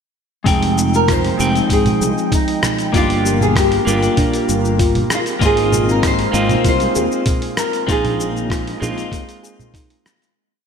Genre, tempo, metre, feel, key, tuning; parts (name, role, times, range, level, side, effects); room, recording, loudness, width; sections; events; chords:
sunset chillout; 97 BPM; 4/4; straight; F dorian; A4 = 440 Hz
clean electric guitar; accompaniment; 0.4-10.3 s; Ab3 to G5; -20 LUFS; left 1 dB; auto-pan
nylon-string guitar; melody; 0.5-9.7 s; Eb4 to C5; -21 LUFS; equal; wide subtle chorus
airy breathy pad; sustained chords; 0.9-10.3 s; F3 to G5; -24 LUFS; equal; chorus
soft round pluck; arpeggios; 0.5-10.0 s; D4 to Bb4; -27 LUFS; left 3 dB; chorus, ping-pong delay
sustaining fretless electric bass; bass; 0.5-9.2 s; F1 to Eb2; -20 LUFS; equal; tube saturation, ensemble chorus
dusty soul sampler-style drum kit; drums; 0.5-10.3 s; cabasa, congas, hi-hat, rim click; -23 LUFS; right 1 dB; gated reverb
electronic kick drum; drums; 0.5-9.9 s; -20 LUFS; equal
moderate lush hall reverb, RT60 2.1 s; bright 1980s-style digital production; -14 LUFS; side -6 dB against mid
0.5-10.4 groove
fade-out 7.1-10.4
0.5 Fm9; 2.9 Gm7; 5.1 Ab69; 7.9 Bb7sus4